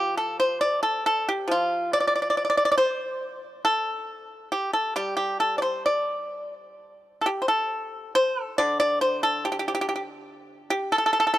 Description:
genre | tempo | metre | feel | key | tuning
chinese traditional, Chinese solo plucked strings | 63-72 BPM | 2/4 | rubato | D yu mode | A4 = 440 Hz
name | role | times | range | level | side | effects
pipa | solo | 0.0-11.4 s | D3 to D5 | -22 LUFS | equal | none
room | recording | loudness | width
light reverb | none | -22 LUFS | side -14 dB against mid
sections
0.0-6.8 A section; 6.8-11.4 B section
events
none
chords
none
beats
0.63 | 1.50 2.37 | 3.23 4.10 | 4.96 5.88 | 6.82 7.73 | 8.60 9.45 | 10.30 11.14

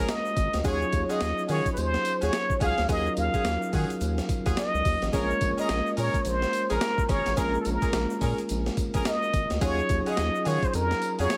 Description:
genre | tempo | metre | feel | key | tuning
R&B, new jack swing | 107 BPM | 4/4 | swing 60% on 16ths | unclear | A4 = 440 Hz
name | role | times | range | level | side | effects
bell-like tine electric piano | accompaniment | 0.0-11.4 s | Gb3 to C5 | -34 LUFS | equal | none
clear horn section | stabs | 0.0-11.3 s | Db4 to Bb4 | -37 LUFS | equal | none
round analog bass | bass | 0.0-11.3 s | Ab1 to Eb3 | -32 LUFS | equal | none
trumpet with plunger mute | melody | 0.1-11.4 s | A4 to F5 | -30 LUFS | equal | none
boom bap sampler-style drum kit | drums | 0.1-11.4 s | hi-hat, kick drum, snare drum, tambourine | -33 LUFS | equal | none
tube shaker | percussion | 0.1-11.4 s | none | -51 LUFS | equal | none
room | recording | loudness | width
light reverb | none | -26 LUFS | mono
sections
0.0-11.4 A section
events
none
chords
0.0 Bbm7; 0.6 Ebm11; 5.1 Bbm7; 9.6 Ebm11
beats
0.09 | 0.65 1.21 1.77 2.33 | 2.89 3.45 4.01 4.57 | 5.13 5.69 6.25 6.81 | 7.38 7.94 8.50 9.06 | 9.62 10.18 10.74 11.30

